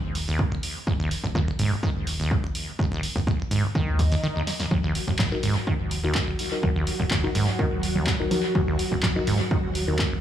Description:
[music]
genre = acid house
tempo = 125 BPM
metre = 4/4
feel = straight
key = Eb minor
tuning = A4 = 440 Hz
[part]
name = round analog bass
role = bass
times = 0.0-10.2 s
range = Eb1 to Eb2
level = -30 LUFS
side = equal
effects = sidechain pumping
[part]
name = punchy analog drum machine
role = drums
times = 0.2-10.1 s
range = congas, handclaps, hi-hat, snare drum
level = -30 LUFS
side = right 1 dB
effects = analog delay
[part]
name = acid bass, saw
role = riff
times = 0.3-10.2 s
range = Eb1 to Eb3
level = -27 LUFS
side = right 1 dB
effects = vintage 12-bit sampler grit, analog delay
[part]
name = electronic kick drum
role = drums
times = 0.4-10.1 s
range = none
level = -27 LUFS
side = equal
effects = none
[part]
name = swell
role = sound effects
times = 3.9-4.7 s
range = none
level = -35 LUFS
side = left 1 dB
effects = none
[part]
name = string machine, full ensemble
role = sustained chords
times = 4.7-10.2 s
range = Gb3 to Gb4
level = -31 LUFS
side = right 1 dB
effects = phaser, ensemble chorus, sidechain pumping
[part]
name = deep mellow chord stab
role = stabs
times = 5.3-9.9 s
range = Eb4 to Bb4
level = -32 LUFS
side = left 4 dB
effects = chorus, analog delay
[sound]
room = light reverb, digital ambience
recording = echo-heavy mix, studio ambience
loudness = -22 LUFS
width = side -10 dB against mid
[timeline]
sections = 0.0-10.2 A section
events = swell 3.9-4.7; break 4.2-4.7; drum fill 4.5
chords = 0.0 Ebm

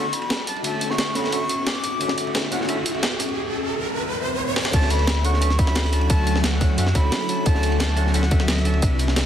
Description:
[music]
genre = liquid drum and bass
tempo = 176 BPM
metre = 4/4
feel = straight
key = D major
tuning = A4 = 436 Hz
[part]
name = breathy bright jazz flute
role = melody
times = 0.0-2.2, 4.7-9.1 s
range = E5 to D6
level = -28 LUFS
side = equal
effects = tape echo
[part]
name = barky tine electric piano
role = accompaniment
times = 0.0-9.3 s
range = C3 to A5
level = -28 LUFS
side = left 1 dB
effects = phaser, tape echo
[part]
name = ethereal airy pad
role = sustained chords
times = 0.0-9.3 s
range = E3 to D6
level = -29 LUFS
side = equal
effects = ensemble chorus, built-in reverb, phaser, sidechain pumping
[part]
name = riser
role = sound effects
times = 0.6-4.7 s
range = none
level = -29 LUFS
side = equal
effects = none
[part]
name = breakbeat sampler-style drum kit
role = drums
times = 0.1-9.2 s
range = crash cymbal, hi-hat, snare drum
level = -26 LUFS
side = equal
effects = high-pass filter on hats, studio reverb, high-pass filter on snare, high-pass filter on cymbals
[part]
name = crunchy breakbeat drum kit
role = drums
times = 0.1-9.2 s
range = ride cymbal, snare drum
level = -30 LUFS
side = equal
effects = high-pass filter on cymbals, studio reverb, high-pass filter on snare, high-pass filter on room
[part]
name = warm sub bass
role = bass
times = 4.7-9.3 s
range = C2 to F#2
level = -21 LUFS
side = equal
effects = none
[part]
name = electronic kick drum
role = drums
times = 4.7-8.9 s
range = none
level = -20 LUFS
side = equal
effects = overdrive, studio reverb
[sound]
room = light reverb, small room ambience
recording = dense, heavily limited modern master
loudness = -19 LUFS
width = side -10 dB against mid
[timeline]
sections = 0.0-4.7 A section; 4.7-9.3 B section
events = build-up 0.0-4.7; riser 0.6-4.7; drum fill 4.6; drop 4.7-9.3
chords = 0.0 Dmaj9; 3.4 Cmaj9; 4.7 Dmaj9

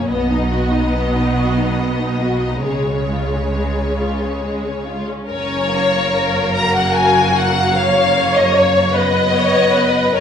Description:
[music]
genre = classical, slow romantic movement for string orchestra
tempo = 45-51 BPM (dotted quarters)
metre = 6/8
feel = rubato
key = F# major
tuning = A4 = 440 Hz
[part]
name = rich symphonic violin section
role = melody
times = 0.0-10.2 s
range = C#5 to A#5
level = -19 LUFS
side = left 3 dB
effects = none
[part]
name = warm symphonic violin section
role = second line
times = 0.0-10.2 s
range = G#3 to C#5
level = -21 LUFS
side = left 2 dB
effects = none
[part]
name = warm symphonic viola section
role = accompaniment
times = 0.0-10.2 s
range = G#3 to C#5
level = -19 LUFS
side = right 1 dB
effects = none
[part]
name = rich symphonic cello section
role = bass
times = 0.0-10.2 s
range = F#2 to C#3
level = -24 LUFS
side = right 2 dB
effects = none
[part]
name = rich symphonic double bass section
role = bass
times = 0.0-10.2 s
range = F#1 to C#2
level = -23 LUFS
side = right 1 dB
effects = none
[sound]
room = wet recital hall reverb, RT60 1.6 s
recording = recorded in a church or concert hall, nothing above 11.0 kHz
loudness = -14 LUFS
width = side -8 dB against mid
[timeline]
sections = 0.0-5.3 A section; 5.3-10.2 B section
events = none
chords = 0.1 B; 2.7 C#; 5.3 F#; 7.8 B/F#

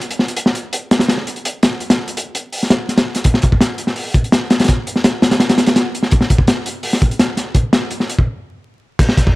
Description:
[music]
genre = drum and bass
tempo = 167 BPM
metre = 4/4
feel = straight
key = none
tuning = none
[part]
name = crunchy breakbeat drum kit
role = drums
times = 0.0-9.4 s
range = crash cymbal, hi-hat, kick drum, snare drum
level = -13 LUFS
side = equal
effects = none
[sound]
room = little or no reverb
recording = vinyl crackle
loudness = -13 LUFS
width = side -20 dB against mid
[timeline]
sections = 0.0-3.2 A section; 3.2-9.0 B section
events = build-up 3.2-9.0; stop 8.3-9.0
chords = none

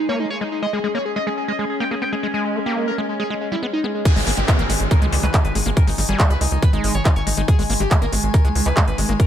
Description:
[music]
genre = psychedelic trance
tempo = 140 BPM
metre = 4/4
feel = straight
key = G# harmonic minor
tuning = A4 = 441 Hz
[part]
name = overdriven synth lead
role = melody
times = 0.0-9.3 s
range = G#3 to G5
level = -25 LUFS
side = equal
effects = distortion, phaser, sidechain pumping, ping-pong delay
[part]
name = evolving wavetable pad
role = sustained chords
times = 0.0-9.3 s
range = D#3 to G#5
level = -28 LUFS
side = left 2 dB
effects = chorus, built-in reverb, sidechain pumping
[part]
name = overdriven acid bass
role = riff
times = 0.1-9.1 s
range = G3 to D#4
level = -26 LUFS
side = moving between left 4 dB and right 3 dB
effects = distortion, auto-pan, sidechain pumping, ping-pong delay
[part]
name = big-room dance drum kit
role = drums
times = 4.1-9.3 s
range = handclaps, hi-hat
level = -24 LUFS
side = equal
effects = overdrive
[part]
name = electronic kick drum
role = drums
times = 4.1-9.3 s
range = none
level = -16 LUFS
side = equal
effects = none
[part]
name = downlifter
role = sound effects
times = 4.1-7.5 s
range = none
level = -28 LUFS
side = equal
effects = none
[part]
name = tight sequencer bass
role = bass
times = 4.2-9.2 s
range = G#1 to C#2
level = -21 LUFS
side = equal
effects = none
[part]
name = resonant blip pluck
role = second line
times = 4.5-5.7 s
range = G3 to B3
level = -34 LUFS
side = left 1 dB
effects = none
[sound]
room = light reverb, digital ambience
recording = none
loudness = -17 LUFS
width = side -10 dB against mid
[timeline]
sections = 0.0-4.1 A section; 4.1-9.3 B section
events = filter sweep on acid bass 0.0-4.1; drop 4.1-9.3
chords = 0.0 G#5

